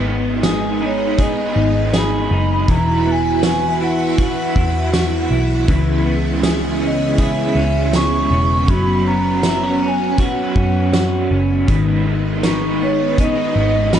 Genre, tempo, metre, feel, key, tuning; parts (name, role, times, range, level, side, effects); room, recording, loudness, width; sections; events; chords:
dream pop; 80 BPM; 4/4; straight; G# minor; A4 = 440 Hz
raw garage guitar; accompaniment; 0.0-14.0 s; G#2 to B4; -23 LUFS; right 5 dB; overdrive, tremolo, analog chorus
string machine, violins; sustained chords; 0.0-14.0 s; C#3 to B4; -22 LUFS; equal; ensemble chorus
clean electric guitar; arpeggios; 0.0-14.0 s; D#3 to G#4; -23 LUFS; left 4 dB; lush chorus, digital delay
vintage muted picked electric bass; bass; 0.0-14.0 s; E1 to F#2; -20 LUFS; equal
loose indie drum kit; drums; 0.4-14.0 s; hi-hat, kick drum, snare drum, tambourine; -19 LUFS; equal
mellow alto ocarina; melody; 0.9-14.0 s; C#5 to C#6; -22 LUFS; right 1 dB; digital delay
glockenspiel with soft plastic mallets; texture; 12.4-13.7 s; C#6; -32 LUFS; right 3 dB; digital delay
light reverb, small room ambience; dark, warm production, nothing above 10.5 kHz; -14 LUFS; side -9 dB against mid
0.0-14.0 A section
0.0 G#m; 2.7 Esus2; 5.7 C#m7; 8.7 F#sus4; 11.7 G#m